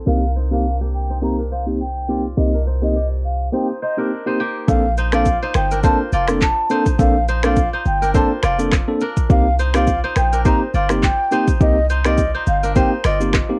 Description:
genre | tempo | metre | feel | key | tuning
afrobeats | 104 BPM | 4/4 | swing 55% on 16ths | Bb major | A4 = 440 Hz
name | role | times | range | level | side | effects
kora | riff | 0.0-13.6 s | Bb3 to D5 | -28 LUFS | equal | cassette tape
warm 808-style bass | bass | 0.0-13.4 s | F1 to C2 | -22 LUFS | equal | none
mellow baroque flute | melody | 0.1-13.2 s | Eb5 to Bb5 | -24 LUFS | equal | cassette tape, tape echo
tine electric piano | accompaniment | 0.1-13.6 s | Bb3 to A4 | -23 LUFS | equal | cassette tape
afro-pop drum kit | drums | 4.7-13.5 s | finger snaps, handclaps, hi-hat, kick drum, rim click, shaker | -21 LUFS | equal | cassette tape
room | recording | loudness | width
light reverb | home recording on cassette, low-pass filter | -18 LUFS | mono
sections
0.0-4.7 A section; 4.7-13.6 B section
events
filter sweep 0.0-4.7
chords
0.1 Cm7; 4.7 Bbmaj9; 9.3 Cm7

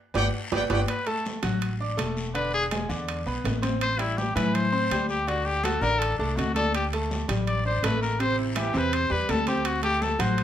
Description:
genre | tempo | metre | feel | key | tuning
latin, salsa | 164 BPM | 4/4 | straight | unclear | A4 = 441 Hz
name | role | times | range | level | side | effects
clear trumpet section | melody | 0.1-0.8 s | D5 to G5 | -30 LUFS | right 1 dB | none
bright grand piano | accompaniment | 0.1-10.4 s | C3 to D6 | -30 LUFS | right 2 dB | none
upright bass | bass | 0.1-10.4 s | E1 to A2 | -29 LUFS | equal | none
guiro | percussion | 0.1-10.4 s | none | -41 LUFS | left 4 dB | none
congas | percussion | 0.2-10.4 s | none | -33 LUFS | left 4 dB | none
timbales | percussion | 0.2-10.4 s | none | -33 LUFS | right 6 dB | none
clear trumpet | melody | 0.9-10.4 s | D4 to D5 | -27 LUFS | left 2 dB | none
room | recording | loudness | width
light reverb | none | -23 LUFS | side -10 dB against mid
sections
0.9-10.4 A section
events
drum fill 0.0-0.9; band accent 0.0-0.9; trumpet solo 0.9-10.4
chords
0.0 Gmaj7; 0.9 D; 2.3 E7; 3.8 Am7; 5.3 D; 6.7 Dsus4; 8.2 Am7; 9.7 D7

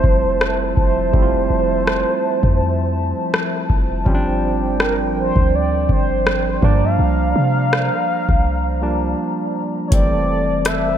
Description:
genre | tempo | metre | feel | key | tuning
contemporary R&B | 82 BPM | 4/4 | swing 54% on 16ths | F major | A4 = 440 Hz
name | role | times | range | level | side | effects
mellow horn-like synth lead | melody | 0.0-11.0 s | Bb4 to F5 | -22 LUFS | equal | chorus, diffuse ambient delay
barky tine electric piano | accompaniment | 0.0-11.0 s | E3 to F4 | -23 LUFS | moving between equal and right 11 dB | overdrive, auto-pan
hollow soft pad | sustained chords | 0.0-11.0 s | F3 to Bb5 | -25 LUFS | left 2 dB | chorus
clean 808-style bass | bass | 0.0-11.0 s | F1 to C3 | -21 LUFS | equal | none
booming analog drum machine | drums | 0.0-10.8 s | hi-hat, kick drum, rim click | -18 LUFS | equal | none
room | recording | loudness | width
moderate plate reverb, RT60 3.5 s | dreamy mix soaked in reverb | -15 LUFS | side -10 dB against mid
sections
0.0-9.9 A section; 9.9-11.0 B section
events
break 9.2-9.9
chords
0.0 Fmaj7; 4.1 G7sus4; 6.6 C9sus4; 9.9 Fmaj7

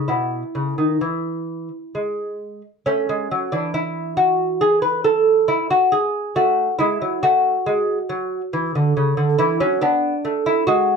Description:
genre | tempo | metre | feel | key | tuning
classical, baroque-style dance for lute | 69 BPM | 4/4 | rubato | A major | A4 = 440 Hz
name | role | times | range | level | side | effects
lute | solo | 0.0-11.0 s | B2 to B4 | -17 LUFS | equal | none
room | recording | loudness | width
moderate studio ambience, RT60 0.5 s | none | -17 LUFS | side -5 dB against mid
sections
0.0-2.9 A section; 2.9-11.0 A section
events
none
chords
0.0 E; 2.9 A5; 6.4 F#m; 9.8 Bm

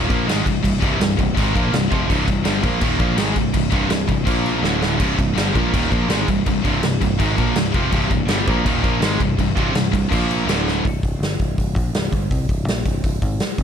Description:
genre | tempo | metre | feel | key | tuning
heavy metal | 164 BPM | 4/4 | straight | C minor | A4 = 440 Hz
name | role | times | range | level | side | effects
high-gain distorted guitar | riff | 0.0-10.8 s | C2 to Bb3 | -24 LUFS | right 13 dB | distortion
high-gain distorted guitar | riff | 0.0-10.8 s | C2 to Bb3 | -26 LUFS | left 1 dB | distortion
scooped high-gain guitar | riff | 0.0-10.8 s | C2 to Bb3 | -24 LUFS | left 14 dB | distortion
picked electric bass | bass | 0.0-13.6 s | C1 to C2 | -23 LUFS | equal | none
big rock drum kit | drums | 0.1-13.6 s | crash cymbal, hi-hat, kick drum, snare drum | -21 LUFS | equal | none
room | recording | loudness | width
little or no reverb | dark, warm production | -17 LUFS | side -8 dB against mid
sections
0.0-10.8 A section; 10.8-13.6 B section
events
drum fill 4.6-5.0, 10.7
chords
0.0 Cm; 4.3 Bb5; 4.6 D5; 5.0 Cm; 10.1 Bb5; 10.5 D5; 10.8 C5

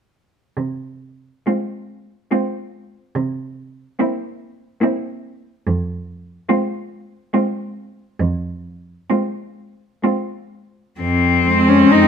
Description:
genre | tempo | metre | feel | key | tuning
classical, lyrical piece for cello ensemble | 59-73 BPM | 3/4 | rubato | F minor | A4 = 440 Hz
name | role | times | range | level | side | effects
rich cello | bass | 0.6-12.1 s | F2 to C3 | -21 LUFS | right 3 dB | none
rich cello | melody | 1.5-12.1 s | C4 to F4 | -18 LUFS | left 6 dB | none
rich cello | second line | 1.5-12.1 s | C4 | -21 LUFS | right 7 dB | none
warm cello | accompaniment | 1.5-12.1 s | Ab3 to Bb3 | -21 LUFS | left 1 dB | none
room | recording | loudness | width
light reverb | minimal, uncompressed stereo recording | -18 LUFS | side -7 dB against mid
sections
0.6-11.0 A section; 11.0-12.1 B section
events
none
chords
0.6 Fm/C; 3.1 C7; 5.7 Fm

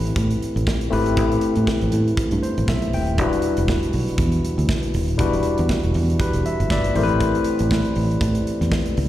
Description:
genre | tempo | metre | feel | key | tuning
disco | 119 BPM | 4/4 | swing 56% on 16ths | unclear | A4 = 440 Hz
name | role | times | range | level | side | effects
barky tine electric piano | accompaniment | 0.0-9.1 s | G3 to G5 | -22 LUFS | left 2 dB | overdrive, auto-pan, slapback echo
fingered electric bass | bass | 0.0-9.1 s | D#1 to A2 | -21 LUFS | right 1 dB | none
modern studio drum kit | drums | 0.1-9.1 s | hi-hat, kick drum, snare drum | -25 LUFS | right 1 dB | none
room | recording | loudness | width
light reverb, studio reverb | live gig heard through the venue's PA, recital hall reverb | -18 LUFS | side -13 dB against mid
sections
0.0-9.1 A section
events
tine electric piano fill 2.2-3.2, 6.5-7.2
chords
0.0 Am7; 3.2 Em9; 7.0 Am7

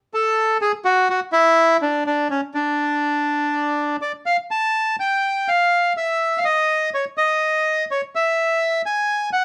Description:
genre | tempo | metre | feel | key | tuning
tango | 124 BPM | 4/4 | rubato | unclear | A4 = 440 Hz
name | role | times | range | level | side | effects
bandoneon | solo | 0.1-9.4 s | C#4 to A5 | -20 LUFS | equal | none
room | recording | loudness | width
moderate studio reverb, RT60 0.6 s | band playing live in one room | -20 LUFS | mono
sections
0.0-4.5 A section; 4.5-9.4 B section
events
none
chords
none

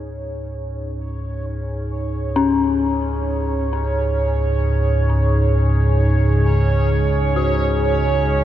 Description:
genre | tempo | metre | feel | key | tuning
dark ambient drone | free time | none | none | unclear | A4 = 440 Hz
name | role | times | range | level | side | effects
dark analog pad | sustained chords | 0.0-8.4 s | D#4 to C#5 | -24 LUFS | right 3 dB | chorus, phaser
deep rumbling drone | drone | 0.0-8.4 s | C#2 to G#2 | -19 LUFS | equal | built-in reverb, wide subtle chorus
bubbling stepped-filter texture | texture | 0.0-8.4 s | C#4 to C#5 | -28 LUFS | right 2 dB | chorus, built-in reverb
dark detuned synth bell | arpeggios | 2.4-8.4 s | C#4 to F#4 | -23 LUFS | left 5 dB | chorus, ping-pong delay
room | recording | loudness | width
moderate huge ambient reverb, RT60 7.7 s | worn, warbling old tape, cassette tape, warbly pitch drift | -16 LUFS | side -12 dB against mid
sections
0.0-8.4 A section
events
fade-in on analog synth pad 0.0-8.4; fade-in on synth texture 0.0-8.4; fade-out on synth bell 0.0-8.4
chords
0.0 C#sus2

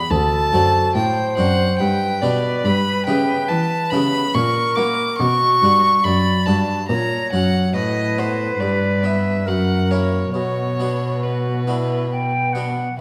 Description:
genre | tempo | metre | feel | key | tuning
classical, baroque-style sonata movement with continuo | 70 BPM | 3/4 | straight | B minor | A4 = 440 Hz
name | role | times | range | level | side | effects
rich violin | second line | 0.0-12.5 s | B4 to D6 | -23 LUFS | equal | none
harpsichord | accompaniment | 0.0-12.9 s | D2 to G4 | -26 LUFS | equal | none
dark cello | bass | 0.0-13.0 s | D2 to A#3 | -24 LUFS | equal | none
silver concert flute | melody | 0.1-13.0 s | E4 to G5 | -27 LUFS | equal | none
room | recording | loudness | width
wet scoring stage reverb, RT60 1.6 s | none | -19 LUFS | mono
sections
0.0-13.0 A section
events
none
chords
0.1 D7; 1.8 G; 2.6 Em/G; 4.3 F#7/A#; 5.2 Bm; 6.9 F#/A#; 7.7 B7/A; 8.6 Em/G; 9.5 F#7; 10.3 Bm

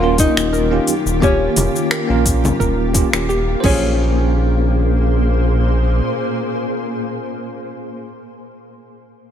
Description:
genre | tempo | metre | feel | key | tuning
sunset chillout | 87 BPM | 4/4 | swing 54% on 16ths | Bb dorian | A4 = 440 Hz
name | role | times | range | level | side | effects
nylon-string guitar | melody | 0.0-8.1 s | Db4 to F4 | -22 LUFS | left 1 dB | tape echo
bell-like tine electric piano | accompaniment | 0.0-8.1 s | Bb3 to C5 | -22 LUFS | right 2 dB | medium stereo tremolo, auto-pan, tape echo
shimmering ambient pad | sustained chords | 0.0-7.5 s | Bb2 to C5 | -23 LUFS | equal | chorus, built-in reverb
soft round pluck | arpeggios | 0.0-4.3 s | G4 to Bb4 | -26 LUFS | equal | analog chorus, tape echo
round analog bass | bass | 0.0-6.0 s | Eb1 to Bb1 | -17 LUFS | equal | none
electronic kick drum | drums | 0.2-3.8 s | none | -18 LUFS | equal | none
smooth R&B drum kit | drums | 0.2-3.8 s | crash cymbal, finger snaps, hi-hat, shaker | -22 LUFS | left 2 dB | none
congas | percussion | 0.9-3.8 s | none | -25 LUFS | left 1 dB | none
room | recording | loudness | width
light reverb | none | -14 LUFS | side -9 dB against mid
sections
0.0-4.0 A section; 4.0-6.7 B section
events
none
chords
0.0 Eb7; 3.6 Bbm9

